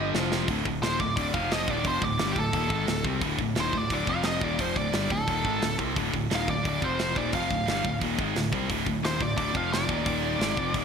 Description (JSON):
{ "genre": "heavy metal", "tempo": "176 BPM", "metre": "4/4", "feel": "straight", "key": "D phrygian", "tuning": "A4 = 440 Hz", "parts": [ { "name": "nasal lead guitar with a parked wah", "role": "melody", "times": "0.0-10.8 s", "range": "G4 to F5", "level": "-30 LUFS", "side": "right 1 dB", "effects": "overdrive, ping-pong delay" }, { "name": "distorted electric guitar", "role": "riff", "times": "0.0-0.5 s", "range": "F2 to G3", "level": "-35 LUFS", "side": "right 1 dB", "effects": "distortion" }, { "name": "scooped high-gain guitar", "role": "riff", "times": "0.0-10.8 s", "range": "D2 to C4", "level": "-32 LUFS", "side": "right 11 dB", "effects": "distortion" }, { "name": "sludgy distorted guitar", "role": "riff", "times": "0.0-10.8 s", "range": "D2 to C4", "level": "-31 LUFS", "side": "left 10 dB", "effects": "overdrive" }, { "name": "modern bright picked electric bass", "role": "bass", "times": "0.0-10.8 s", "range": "D1 to C2", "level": "-34 LUFS", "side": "equal", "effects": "none" }, { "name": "tight metal drum kit", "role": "drums", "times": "0.1-10.8 s", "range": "hi-hat, kick drum, snare drum", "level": "-31 LUFS", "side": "right 1 dB", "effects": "gated reverb" } ], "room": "moderate lush hall reverb, RT60 2.0 s", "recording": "bright 1980s-style digital production", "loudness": "-24 LUFS", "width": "side -6 dB against mid", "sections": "0.5-10.8 A section", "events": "drum fill 0.0-0.5", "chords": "0.1 F5; 0.5 D5; 1.3 F5; 1.7 Dm; 4.1 F5; 4.4 Dm; 6.8 F5; 7.2 Dm; 9.6 F5; 9.9 Eb5; 10.4 Dm" }